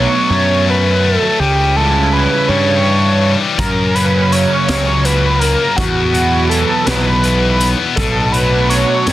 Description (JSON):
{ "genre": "indie rock", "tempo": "55 BPM (dotted quarters)", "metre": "6/8", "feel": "straight", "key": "B minor", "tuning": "A4 = 441 Hz", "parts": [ { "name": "overdriven synth lead", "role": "melody", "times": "0.0-9.1 s", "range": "F#4 to C#5", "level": "-16 LUFS", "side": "right 1 dB", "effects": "distortion, slapback echo" }, { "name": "high-gain distorted guitar", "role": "riff", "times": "0.0-9.1 s", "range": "E2 to B3", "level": "-17 LUFS", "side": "left 6 dB", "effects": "distortion" }, { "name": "twangy electric guitar", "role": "riff", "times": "0.0-9.1 s", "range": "B2 to E4", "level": "-21 LUFS", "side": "right 6 dB", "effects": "analog chorus, slapback echo" }, { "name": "fuzz picked electric bass", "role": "bass", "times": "0.0-9.1 s", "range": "B1 to G2", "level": "-16 LUFS", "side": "equal", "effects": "overdrive" }, { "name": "raw garage drum kit", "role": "drums", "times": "3.6-9.1 s", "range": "hi-hat, kick drum, snare drum", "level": "-21 LUFS", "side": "equal", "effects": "none" } ], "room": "light reverb", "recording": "dense, heavily limited modern master", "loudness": "-11 LUFS", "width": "side -14 dB against mid", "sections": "0.0-9.1 A section", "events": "none", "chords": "0.0 Bm7; 1.4 C#dim; 3.6 F#; 5.8 Esus2; 8.0 Bm7" }